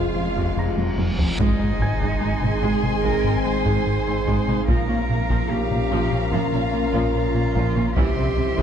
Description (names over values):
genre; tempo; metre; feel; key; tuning
cinematic, hybrid orchestral and electronic film score; 73 BPM; 4/4; straight; unclear; A4 = 440 Hz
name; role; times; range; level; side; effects
dark symphonic violin section; melody; 0.0-8.6 s; F5 to C6; -35 LUFS; left 2 dB; none
warm symphonic violin section; second line; 0.0-8.6 s; F4 to Ab5; -31 LUFS; left 2 dB; none
warm symphonic viola section; accompaniment; 0.0-8.6 s; C3 to Eb4; -31 LUFS; right 2 dB; none
glassy FM pad; sustained chords; 0.0-8.6 s; E3 to C5; -30 LUFS; left 1 dB; ensemble chorus, built-in reverb
mellow French horn section; sustained chords; 0.0-8.6 s; C4 to C5; -29 LUFS; left 1 dB; none
warm trombone section; sustained chords; 0.0-8.6 s; Eb3 to Ab3; -32 LUFS; right 4 dB; none
rubbery square bass; riff; 0.0-8.6 s; C2 to Bb3; -26 LUFS; left 2 dB; none
snarling distorted saw bass; bass; 0.0-8.6 s; F1 to C2; -29 LUFS; equal; distortion
warm symphonic cello section; bass; 0.0-8.6 s; F2 to C3; -30 LUFS; right 4 dB; none
reverse cymbal and impact; sound effects; 0.3-4.7 s; none; -34 LUFS; right 1 dB; none
taiko ensemble; drums; 0.4-8.6 s; none; -27 LUFS; equal; none
dark baby grand piano; texture; 0.6-4.7 s; Ab5 to Bb6; -39 LUFS; left 1 dB; none
clear symphonic double bass section; bass; 1.0-8.5 s; F1 to C2; -31 LUFS; right 4 dB; none
rich cello; melody; 1.4-8.6 s; Eb4 to C5; -29 LUFS; right 2 dB; tape echo
room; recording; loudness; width
wet concert hall reverb, RT60 2.3 s; dark, warm production; -19 LUFS; side -8 dB against mid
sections
0.0-1.4 A section; 1.4-8.6 B section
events
reverse cymbal 0.3-1.4; drum fill 0.6-1.4; impact 1.4-4.7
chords
0.0 Fm; 1.4 Ab; 4.7 Bbm; 8.0 C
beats
0.57 | 1.39 2.21 3.04 3.86 | 4.68 5.50 6.32 7.15 | 7.97